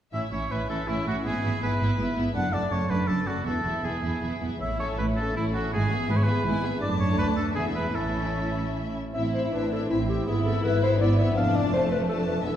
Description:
quick classical-period movement for symphony orchestra; 162 BPM; 3/4; rubato; A major, A minor from 9.1 s; A4 = 441 Hz
warm symphonic violin section; melody; 0.1-12.6 s; C#5 to A5; -39 LUFS; left 4 dB
clear oboe; second line; 0.1-8.8 s; E4 to F#5; -30 LUFS; equal
warm studio violin section; second line; 0.1-12.6 s; A3 to A4; -33 LUFS; left 2 dB
warm studio viola section; accompaniment; 0.1-12.6 s; G#3 to E4; -32 LUFS; right 1 dB
rich studio cello section; bass; 0.1-12.6 s; D2 to A2; -29 LUFS; right 1 dB
warm studio double bass section; bass; 0.1-12.6 s; E1 to D2; -31 LUFS; right 1 dB
warm clarinet; second line; 9.1-12.6 s; E4 to F5; -27 LUFS; left 3 dB
wet recital hall reverb, RT60 1.9 s; heard from further back in the room; -24 LUFS; side -10 dB against mid
0.1-9.1 A section; 9.1-12.6 B section
0.1 A; 1.2 E/G#; 2.4 D/F#; 3.5 E; 4.6 A; 5.7 E/G#; 6.8 D/F#; 7.6 E; 8.0 A; 9.1 Am; 10.3 E/G#; 11.4 Dm/F

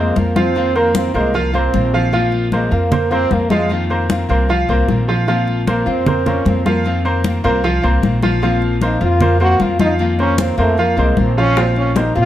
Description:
latin, Cuban son and guajira; 153 BPM; 4/4; straight; A4 = 440 Hz
warm French horn; melody; 0.0-12.3 s; Ab3 to Gb4; -18 LUFS; right 1 dB
nylon-string guitar; accompaniment; 0.0-12.3 s; Eb3 to F4; -22 LUFS; left 3 dB
clear grand piano; arpeggios; 0.0-12.3 s; F3 to F5; -19 LUFS; right 1 dB
upright bass; bass; 0.0-12.3 s; Bb1 to Bb2; -18 LUFS; equal
congas; percussion; 0.2-12.3 s; -20 LUFS; left 2 dB
bongos; percussion; 11.6-12.3 s; -24 LUFS; left 4 dB
light reverb; -13 LUFS; side -12 dB against mid
0.0-12.3 A section
French horn solo 0.0-12.3
0.0 Bbsus2; 0.6 F7sus4; 2.1 Bbsus2; 3.7 F7sus4; 5.3 Bbsus2; 6.9 F7sus4; 8.4 Bbsus2; 10.0 F7sus4; 11.6 Bbsus2

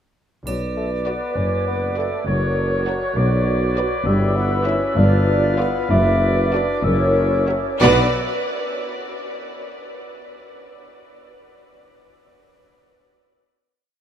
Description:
cinematic, playful, whimsical film cue; 62-67 BPM (dotted quarters); 6/8; straight; B minor; A4 = 440 Hz
clear oboe; second line; 0.5-8.1 s; C#5 to F5; -28 LUFS; equal
large flute ensemble; second line; 0.5-8.2 s; F#4 to E5; -27 LUFS; right 2 dB
mellow clarinet; second line; 0.5-8.1 s; A#4 to B4; -29 LUFS; right 2 dB
mellow bassoon; accompaniment; 0.5-8.1 s; F#3 to E4; -26 LUFS; left 4 dB
mellow French horn section; sustained chords; 0.5-8.1 s; D4 to D5; -28 LUFS; right 2 dB
clear chamber double bass section; bass; 0.5-8.2 s; F#1 to B1; -25 LUFS; left 1 dB
dark tuba; bass; 0.5-8.1 s; F#1 to B1; -23 LUFS; equal
warm chamber cello section; bass; 0.5-8.2 s; F#2 to B2; -23 LUFS; equal
triangle; percussion; 0.5-1.6 s; -42 LUFS; right 5 dB
rich chamber violin section; melody; 1.1-8.2 s; C#5 to E5; -29 LUFS; equal
warm chamber violin section; second line; 1.1-8.2 s; A#4 to B4; -31 LUFS; right 6 dB
rich chamber viola section; accompaniment; 1.1-8.2 s; E4 to F#4; -32 LUFS; right 2 dB
wet huge ambient reverb, RT60 7.7 s; in a vast, echoing space; -17 LUFS; side -9 dB against mid
0.5-7.8 A section; 7.8-9.7 final chord
0.5 Bm; 2.3 F#; 3.2 Bm; 4.1 Em/G; 5.0 G7; 5.9 Bm/F#; 6.8 F#7; 7.8 Bm

